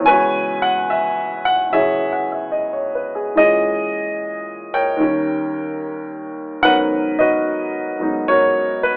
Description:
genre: solo jazz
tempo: 73 BPM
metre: 4/4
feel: swing 68% on 8ths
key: G# minor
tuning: A4 = 440 Hz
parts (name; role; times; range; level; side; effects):
- warm upright piano; solo; 0.0-9.0 s; D#2 to G#5; -19 LUFS; equal; none
room: moderate studio reverb, RT60 0.8 s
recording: band playing live in one room, telephone sound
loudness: -19 LUFS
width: mono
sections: 0.0-9.0 A section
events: none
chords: 0.1 E69; 3.3 A#m7b5; 5.0 D#7; 6.6 G#m11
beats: | 0.06 0.88 1.71 2.53 | 3.35 4.17 4.99 5.81 | 6.63 7.45 8.28

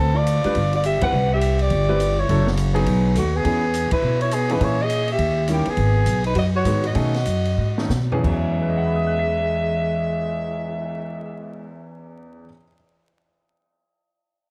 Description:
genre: jazz, small-group swing and bop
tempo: 176-208 BPM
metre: 4/4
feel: swing 62% on 8ths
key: E major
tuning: A4 = 443 Hz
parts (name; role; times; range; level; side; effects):
- growling soprano saxophone; melody; 0.0-11.7 s; F#4 to F#5; -27 LUFS; equal; none
- breathy alto saxophone; second line; 0.0-11.7 s; G#3 to B4; -31 LUFS; equal; none
- upright bass; bass; 0.0-12.4 s; F#1 to B2; -24 LUFS; equal; none
- open jazz drum kit; drums; 0.3-10.9 s; crash cymbal, cymbal swell, hi-hat, kick drum, ride cymbal, snare drum, toms; -33 LUFS; equal; none
- bright grand piano; accompaniment; 0.4-12.7 s; E2 to B6; -29 LUFS; equal; none
room: moderate spring reverb, RT60 2.0 s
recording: vinyl crackle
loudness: -21 LUFS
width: mono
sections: 0.0-5.8 A section; 5.8-8.2 B section; 8.2-11.0 C section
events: band accent 1.0, 3.9; slowing down 5.8-8.2; drum fill 7.6-8.2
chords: 0.0 Dm; 0.6 C; 2.3 F#m7; 2.9 B; 3.5 E6; 4.6 A#m7b5; 5.2 D#7b9; 5.8 G#m7; 7.0 B13; 8.2 E6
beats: 0.27 0.56 0.85 | 1.14 1.43 1.72 2.01 | 2.30 2.59 2.88 3.17 | 3.46 3.75 4.03 4.32 | 4.61 4.90 5.19 5.48 | 5.77 6.06 6.35 6.65 | 6.95 7.26 7.58 7.90 | 8.24 8.58 8.92 9.26 | 9.60 9.94 10.29 10.63

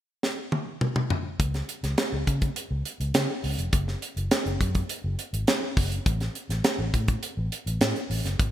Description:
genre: polished 1980s jazz-funk pop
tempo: 103 BPM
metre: 4/4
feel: straight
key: unclear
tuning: A4 = 441 Hz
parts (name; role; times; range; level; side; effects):
- tight funk drum kit; drums; 0.2-8.5 s; hi-hat, kick drum, snare drum, toms; -26 LUFS; equal; gated reverb
- vintage muted fingered electric bass; bass; 1.4-8.5 s; F1 to Db3; -28 LUFS; equal; none
room: light reverb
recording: bright 1980s-style digital production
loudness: -25 LUFS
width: side -12 dB against mid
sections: 0.0-1.4 A section; 1.4-8.5 B section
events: drum fill 0.2-1.4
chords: none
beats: 0.23 0.81 | 1.40 1.98 2.56 3.15 | 3.73 4.31 4.90 5.48 | 6.06 6.64 7.23 7.81 | 8.39

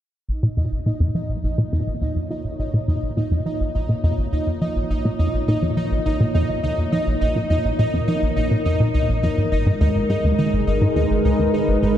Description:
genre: ambient, sequencer-driven space music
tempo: 104 BPM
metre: 4/4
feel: straight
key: Bb phrygian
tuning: A4 = 440 Hz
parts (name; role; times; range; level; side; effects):
- sweeping resonant pad; sustained chords; 0.3-12.0 s; Ab3 to Db5; -25 LUFS; equal; chorus
- plucky analog bass; riff; 0.3-12.0 s; Ab1 to F3; -20 LUFS; equal; tape echo
- pulsing gated texture; texture; 0.3-12.0 s; Eb4 to Eb5; -26 LUFS; equal; chorus, built-in reverb
room: wet huge ambient reverb, RT60 8.0 s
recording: dark, warm production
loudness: -18 LUFS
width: side -11 dB against mid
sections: 0.3-12.0 A section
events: fade-in on analog synth pad 0.3-12.0; filter sweep on analog synth bass 0.3-12.0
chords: 0.3 Bbm; 9.5 Abm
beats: | 0.29 0.86 1.44 2.02 | 2.60 3.17 3.75 4.33 | 4.90 5.48 6.06 6.63 | 7.21 7.79 8.36 8.94 | 9.52 10.10 10.67 11.25 | 11.83

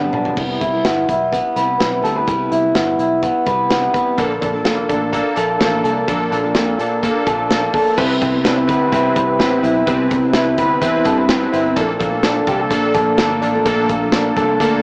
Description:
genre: jangly indie pop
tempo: 126 BPM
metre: 4/4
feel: straight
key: C major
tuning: A4 = 437 Hz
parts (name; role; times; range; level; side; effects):
- picked steel-string acoustic guitar; accompaniment; 0.0-14.8 s; Bb2 to A4; -27 LUFS; equal; none
- electric guitar through a small old amp; arpeggios; 0.0-14.8 s; G2 to B4; -20 LUFS; equal; cassette tape, tape echo, plate reverb
- vintage muted picked electric bass; bass; 0.0-14.8 s; F1 to Bb2; -31 LUFS; equal; none
- modern studio drum kit; drums; 0.0-14.7 s; crash cymbal, hi-hat, kick drum, snare drum, toms; -24 LUFS; equal; cassette tape
- warm analog keys; accompaniment; 4.2-14.8 s; Bb3 to B4; -22 LUFS; equal; chorus, cassette tape, plate reverb
room: moderate studio ambience, RT60 0.5 s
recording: home recording on cassette, small speaker sound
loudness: -17 LUFS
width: mono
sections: 0.4-8.0 A section; 8.0-14.8 B section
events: drum fill 0.0-0.4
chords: 0.4 Cmaj7; 4.2 Bbmaj7; 8.0 Cmaj7; 11.8 Bbmaj7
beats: | 0.37 0.85 1.32 1.80 | 2.28 2.75 3.23 3.70 | 4.18 4.66 5.13 5.61 | 6.08 6.55 7.03 7.50 | 7.98 8.45 8.93 9.40 | 9.87 10.35 10.82 11.29 | 11.77 12.24 12.71 13.19 | 13.66 14.13 14.60

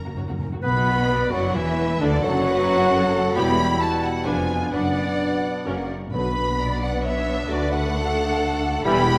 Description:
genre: classical, dramatic, fast romantic movement for symphony orchestra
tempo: 132 BPM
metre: 3/4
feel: rubato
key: B minor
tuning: A4 = 440 Hz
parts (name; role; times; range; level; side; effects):
- dark studio violin section; melody; 0.0-9.2 s; D5 to B5; -32 LUFS; equal; none
- warm symphonic violin section; second line; 0.0-9.2 s; A#3 to D5; -33 LUFS; equal; none
- warm symphonic viola section; accompaniment; 0.0-9.2 s; D3 to Cb5; -35 LUFS; equal; none
- warm symphonic cello section; bass; 0.0-9.2 s; D2 to B2; -31 LUFS; equal; none
- timpani; percussion; 0.0-1.3, 6.1-6.8 s; F#2 to B2; -34 LUFS; equal; none
- warm symphonic double bass section; bass; 0.2-9.2 s; E1 to D2; -31 LUFS; equal; none
- hollow concert flute; second line; 0.6-9.2 s; D5 to B5; -31 LUFS; equal; none
- mellow clarinet; second line; 0.6-9.2 s; C#4 to B4; -30 LUFS; equal; none
- warm bassoon; accompaniment; 0.6-9.2 s; D3 to B3; -30 LUFS; equal; none
- warm French horn section; sustained chords; 0.6-9.0 s; D3 to F#4; -35 LUFS; equal; none
- warm trombone section; sustained chords; 0.6-9.0 s; B2 to B3; -31 LUFS; equal; none
room: wet scoring stage reverb, RT60 1.7 s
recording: none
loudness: -22 LUFS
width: mono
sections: 0.6-9.2 A section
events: timpani fill 0.0-0.6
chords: 0.0 F#; 0.6 Bm; 2.0 D; 3.4 Em; 4.3 Fdim7; 4.7 Bm/F#; 5.7 F#; 6.1 Bm; 7.5 D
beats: 0.16 | 0.64 1.10 1.55 | 2.01 2.46 2.91 | 3.36 3.81 4.27 | 4.74 5.20 5.67 | 6.14 6.60 7.05 | 7.50 7.95 8.40 | 8.86

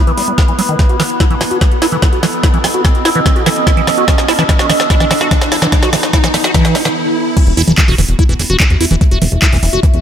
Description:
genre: psychedelic trance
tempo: 146 BPM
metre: 4/4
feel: straight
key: unclear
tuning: A4 = 439 Hz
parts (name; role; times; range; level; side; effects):
- overtone-sweeping drone; sustained chords; 0.0-7.0 s; B3 to B4; -20 LUFS; right 2 dB; chorus, built-in reverb, phaser, sidechain pumping
- riser; sound effects; 0.0-7.4 s; none; -21 LUFS; left 1 dB; none
- warbly tape-like pad; texture; 0.0-10.0 s; B3 to B5; -22 LUFS; right 2 dB; chorus, built-in reverb, sidechain pumping
- liquid acid bass; riff; 0.1-9.9 s; D#3 to F#4; -17 LUFS; right 1 dB; phaser, auto-pan, cassette tape, sidechain pumping, dub echo
- garage drum kit; drums; 0.1-10.0 s; crash cymbal, handclaps, hi-hat, snare drum; -17 LUFS; equal; overdrive, high-pass filter on snare, high-pass filter on hats, high-pass filter on cymbals
- electronic kick drum; drums; 0.4-9.9 s; none; -12 LUFS; equal; overdrive
- plucky analog bass; bass; 7.5-10.0 s; E1 to E2; -14 LUFS; equal; none
room: light reverb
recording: none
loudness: -9 LUFS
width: side -9 dB against mid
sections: 0.0-7.4 A section; 7.4-10.0 B section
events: build-up 0.0-7.4; drum fill 0.0-7.0; riser 0.0-7.4; filter sweep on acid bass 0.0-7.4; stop 7.0-7.4; drop 7.4-10.0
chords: 0.0 E5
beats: 0.38 | 0.79 1.20 1.61 2.02 | 2.44 2.85 3.26 3.67 | 4.08 4.49 4.90 5.31 | 5.72 6.13 6.54 6.96 | 7.37 7.78 8.19 8.60 | 9.01 9.42 9.83

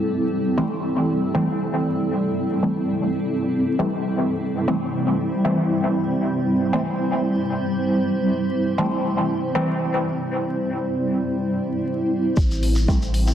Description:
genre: dub techno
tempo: 117 BPM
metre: 4/4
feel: swing 54% on 16ths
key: A minor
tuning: A4 = 436 Hz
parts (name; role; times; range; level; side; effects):
- granular cloud pad; sustained chords; 0.0-13.3 s; G3 to C5; -22 LUFS; equal; built-in reverb, sidechain pumping
- filtered dub chord stab; stabs; 0.6-9.7, 12.9-13.0 s; E3 to C4; -24 LUFS; equal; chorus, phaser, sidechain pumping, dub echo
- warm sub bass; bass; 12.4-13.3 s; A1; -21 LUFS; equal; sidechain pumping
- electronic kick drum; drums; 12.4-13.0 s; none; -20 LUFS; equal; none
- shekere; percussion; 12.4-13.3 s; none; -34 LUFS; left 1 dB; none
- electronic hi-hat; drums; 12.6-13.2 s; none; -34 LUFS; left 1 dB; overdrive
room: wet lush hall reverb, RT60 2.1 s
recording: dense, heavily limited modern master, vinyl crackle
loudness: -20 LUFS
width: side -10 dB against mid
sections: 0.0-12.4 A section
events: none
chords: 0.0 Am7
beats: | 0.06 0.58 1.09 1.60 | 2.11 2.63 3.14 3.65 | 4.17 4.68 5.19 5.70 | 6.22 6.73 7.24 7.75 | 8.27 8.78 9.29 9.81 | 10.32 10.83 11.35 11.86 | 12.37 12.88

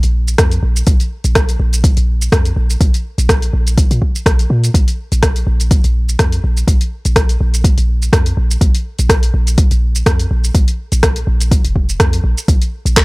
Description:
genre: afro house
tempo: 124 BPM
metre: 4/4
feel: swing 54% on 16ths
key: unclear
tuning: A4 = 440 Hz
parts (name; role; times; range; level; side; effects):
- warm 808-style bass; bass; 0.0-13.0 s; F1 to Bb2; -15 LUFS; equal; sidechain pumping
- deep house drum kit; drums; 0.0-13.0 s; handclaps, hi-hat, rim click, shaker; -17 LUFS; equal; overdrive
- electronic kick drum; drums; 0.4-13.0 s; none; -13 LUFS; equal; overdrive
room: little or no reverb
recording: dry, gritty hardware recording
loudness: -11 LUFS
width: side -24 dB against mid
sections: 0.0-13.0 A section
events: none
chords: none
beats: 0.39 | 0.87 1.35 1.84 2.32 | 2.81 3.29 3.77 4.26 | 4.74 5.23 5.71 6.19 | 6.68 7.16 7.64 8.13 | 8.61 9.10 9.58 10.06 | 10.55 11.03 11.52 12.00 | 12.48 12.97

